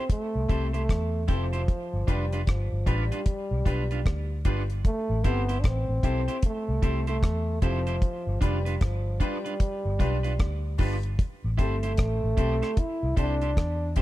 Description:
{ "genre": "roots reggae", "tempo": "76 BPM", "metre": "4/4", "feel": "swing 62% on 16ths", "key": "A minor", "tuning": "A4 = 441 Hz", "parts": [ { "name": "warm trombone", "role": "melody", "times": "0.0-14.0 s", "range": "F3 to E4", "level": "-32 LUFS", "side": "right 1 dB", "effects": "tape echo" }, { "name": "electric guitar at the edge of break-up", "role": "accompaniment", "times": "0.0-14.0 s", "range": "D4 to C5", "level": "-36 LUFS", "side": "right 5 dB", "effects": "tape echo" }, { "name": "deep reggae drum kit", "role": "drums", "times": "0.1-14.0 s", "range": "hi-hat, kick drum, rim click", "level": "-25 LUFS", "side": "equal", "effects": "none" }, { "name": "vintage muted fingered electric bass", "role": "bass", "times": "0.4-14.0 s", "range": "F1 to E2", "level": "-28 LUFS", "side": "equal", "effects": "none" }, { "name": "bright upright piano", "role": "stabs", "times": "0.5-14.0 s", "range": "C4 to B4", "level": "-37 LUFS", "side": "left 6 dB", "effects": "none" } ], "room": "little or no reverb", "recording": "dark, warm production", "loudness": "-24 LUFS", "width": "side -16 dB against mid", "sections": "0.0-14.0 A section", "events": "none", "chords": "0.0 Am7; 1.7 G7; 4.9 Am7; 8.0 G7; 11.2 Am7", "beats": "0.10 0.89 | 1.68 2.47 3.27 4.06 | 4.85 5.64 6.44 7.23 | 8.02 8.81 9.61 10.40 | 11.19 11.99 12.78 13.57" }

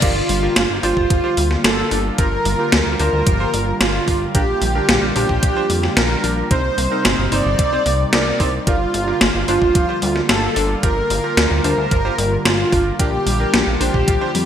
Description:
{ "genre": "synthwave", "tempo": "111 BPM", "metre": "4/4", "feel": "straight", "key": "G minor", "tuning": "A4 = 440 Hz", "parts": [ { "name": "soft supersaw", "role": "melody", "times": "0.0-14.5 s", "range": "F4 to D5", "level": "-21 LUFS", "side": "right 1 dB", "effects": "cassette tape, digital delay" }, { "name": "airy dreamy lead", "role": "second line", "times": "0.0-14.5 s", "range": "F4 to D5", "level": "-27 LUFS", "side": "right 1 dB", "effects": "chorus, digital delay" }, { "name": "warm analog pad", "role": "sustained chords", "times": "0.0-14.5 s", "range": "C3 to F4", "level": "-26 LUFS", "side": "equal", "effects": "chorus, sidechain pumping" }, { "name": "analog pluck", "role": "arpeggios", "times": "0.0-14.5 s", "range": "F3 to Eb4", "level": "-28 LUFS", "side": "left 3 dB", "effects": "none" }, { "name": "clear electric grand piano", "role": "stabs", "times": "0.0-14.3 s", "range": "Bb3 to C5", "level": "-26 LUFS", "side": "right 3 dB", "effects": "lush chorus, digital delay" }, { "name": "chorused synth bass", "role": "bass", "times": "0.0-14.5 s", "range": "G1 to F2", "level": "-22 LUFS", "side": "equal", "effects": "none" }, { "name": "electronic kick drum", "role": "drums", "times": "0.0-14.2 s", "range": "none", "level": "-20 LUFS", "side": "equal", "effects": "overdrive" }, { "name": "gated 80s digital drum machine", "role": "drums", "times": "0.0-14.5 s", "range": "crash cymbal, hi-hat, snare drum", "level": "-20 LUFS", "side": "equal", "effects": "gated reverb, gated reverb snare, overdrive, high-pass filter on hats, high-pass filter on toms, high-pass filter on cymbals, high-pass filter on snare, high-pass filter on room" } ], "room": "moderate lush hall reverb, RT60 2.0 s", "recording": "bright 1980s-style digital production", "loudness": "-15 LUFS", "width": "side -9 dB against mid", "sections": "0.0-14.5 A section", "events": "none", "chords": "0.0 Gm7; 4.3 Bb6; 6.5 Cm7; 8.7 Gm7; 13.0 Bb6", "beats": "| 0.02 0.56 1.10 1.65 | 2.19 2.73 3.27 3.81 | 4.35 4.89 5.43 5.97 | 6.51 7.05 7.59 8.13 | 8.67 9.21 9.75 10.29 | 10.83 11.37 11.91 12.46 | 13.00 13.54 14.08" }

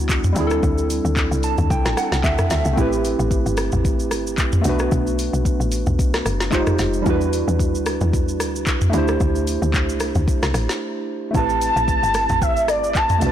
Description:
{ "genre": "amapiano", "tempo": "112 BPM", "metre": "4/4", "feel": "swing 55% on 16ths", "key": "A dorian", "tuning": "A4 = 444 Hz", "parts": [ { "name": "warm analog keys", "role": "accompaniment", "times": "0.0-13.3 s", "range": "G3 to A5", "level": "-22 LUFS", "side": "right 2 dB", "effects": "chorus" }, { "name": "woody log drum bass", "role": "bass", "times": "0.0-13.3 s", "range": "F1 to E2", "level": "-23 LUFS", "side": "left 1 dB", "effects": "none" }, { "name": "smooth R&B drum kit", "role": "drums", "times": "0.1-13.3 s", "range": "handclaps, hi-hat, kick drum, rim click, shaker, snare drum, toms", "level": "-22 LUFS", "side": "equal", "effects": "soft clipping on snare" }, { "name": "warm velvety synth lead", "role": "melody", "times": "11.4-13.3 s", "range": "D5 to A5", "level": "-18 LUFS", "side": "equal", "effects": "chorus, ping-pong delay" } ], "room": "little or no reverb", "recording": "blown-out, overdriven recording, overdrive", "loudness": "-17 LUFS", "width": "side -10 dB against mid", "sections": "0.0-13.3 A section", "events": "synth keys fill 1.2-2.8; break 10.8-11.3", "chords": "0.4 D9sus4; 2.8 Am7; 4.7 Bm7; 6.5 Fm9; 7.1 Em9; 8.9 D9sus4; 11.3 Am7", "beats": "0.10 | 0.63 1.17 1.70 2.24 | 2.77 3.31 3.85 4.38 | 4.92 5.45 5.99 6.53 | 7.06 7.60 8.13 8.67 | 9.20 9.74 10.28 10.81 | 11.35 11.88 12.42 12.95" }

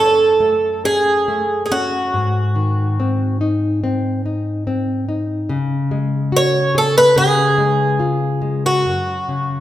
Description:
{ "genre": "fado-style ballad", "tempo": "71 BPM", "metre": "4/4", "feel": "rubato", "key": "F# harmonic minor", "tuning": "A4 = 438 Hz", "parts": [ { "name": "picked twelve-string acoustic guitar", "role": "melody", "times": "0.0-9.6 s", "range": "F#4 to C#5", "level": "-15 LUFS", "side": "right 1 dB", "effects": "none" }, { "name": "nylon-string guitar", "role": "accompaniment", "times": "0.0-9.6 s", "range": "F#2 to G#4", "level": "-19 LUFS", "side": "left 2 dB", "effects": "none" } ], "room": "wet recital hall reverb, RT60 1.7 s", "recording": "none", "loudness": "-15 LUFS", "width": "side -13 dB against mid", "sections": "0.0-9.6 A section", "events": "none", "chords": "0.0 F#m; 2.1 G#7; 5.5 C#sus4; 7.2 C#; 8.9 F#5", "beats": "0.41 1.29 | 2.15 2.99 3.83 4.66 | 5.49 6.33 7.17 8.01 | 8.87" }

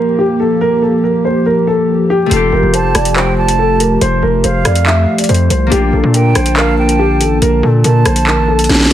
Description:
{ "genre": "hip hop, drill", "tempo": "141 BPM", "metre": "4/4", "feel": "half-time", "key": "unclear", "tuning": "A4 = 440 Hz", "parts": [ { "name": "dark concert grand piano", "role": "melody", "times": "0.0-8.9 s", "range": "G4 to E5", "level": "-15 LUFS", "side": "equal", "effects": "digital delay" }, { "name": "dark analog pad", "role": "sustained chords", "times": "0.0-8.9 s", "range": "D3 to A5", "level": "-16 LUFS", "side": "equal", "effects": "chorus" }, { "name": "concert harp", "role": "accompaniment", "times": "2.3-8.9 s", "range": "A3 to G4", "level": "-20 LUFS", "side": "left 3 dB", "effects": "none" }, { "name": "distorted 808-style bass", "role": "bass", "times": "2.3-8.9 s", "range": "F1 to Bb2", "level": "-13 LUFS", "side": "equal", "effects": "distortion" }, { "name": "drill drum kit", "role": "drums", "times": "2.3-8.9 s", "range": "handclaps, hi-hat, rim click, snare drum", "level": "-15 LUFS", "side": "equal", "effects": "none" }, { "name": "jazz flute", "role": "second line", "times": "2.7-8.9 s", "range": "F5 to A5", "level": "-19 LUFS", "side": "right 5 dB", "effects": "digital delay" } ], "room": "small room ambience", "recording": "dense, heavily limited modern master, vinyl crackle", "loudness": "-10 LUFS", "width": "side -11 dB against mid", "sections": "0.0-8.9 A section", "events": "drum fill 8.7", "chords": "0.0 Gm7; 2.3 Fadd9; 5.7 Bbmaj7", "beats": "0.18 | 0.61 1.03 1.46 1.89 | 2.31 2.74 3.16 3.59 | 4.01 4.44 4.87 5.29 | 5.72 6.14 6.57 6.99 | 7.42 7.84 8.27 8.70" }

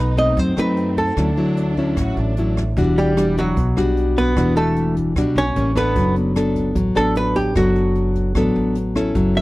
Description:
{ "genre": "bossa nova", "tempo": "150 BPM", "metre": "4/4", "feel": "straight", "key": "D major", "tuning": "A4 = 442 Hz", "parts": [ { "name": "archtop guitar, miked and amplified", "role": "melody", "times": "0.0-9.4 s", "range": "F#3 to E5", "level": "-21 LUFS", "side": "right 1 dB", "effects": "none" }, { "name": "warm studio violin section", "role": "second line", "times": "0.0-2.6 s", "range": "C4 to F#4", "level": "-31 LUFS", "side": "right 2 dB", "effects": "none" }, { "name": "nylon-string guitar", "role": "accompaniment", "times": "0.0-9.4 s", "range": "A2 to A4", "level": "-19 LUFS", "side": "left 1 dB", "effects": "none" }, { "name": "upright bass", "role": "bass", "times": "0.0-9.4 s", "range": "E1 to F#2", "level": "-22 LUFS", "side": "equal", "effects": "none" }, { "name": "jazz brush drum kit", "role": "drums", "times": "0.2-9.4 s", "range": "hi-hat, kick drum, rim click", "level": "-28 LUFS", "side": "equal", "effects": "none" } ], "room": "small room ambience", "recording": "dry, close 1970s-style studio recording", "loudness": "-16 LUFS", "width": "side -19 dB against mid", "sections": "0.0-2.8 A section; 2.8-9.4 B section", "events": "hollow-body jazz guitar solo 2.8-9.4", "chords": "0.0 B7b9; 1.2 Dmaj9; 2.8 Em9; 5.6 A7b9; 6.0 D6/F#", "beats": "0.37 0.77 | 1.17 1.57 1.97 2.37 | 2.77 3.17 3.56 3.96 | 4.37 4.76 5.16 5.56 | 5.96 6.36 6.76 7.16 | 7.56 7.96 8.36 8.76 | 9.15" }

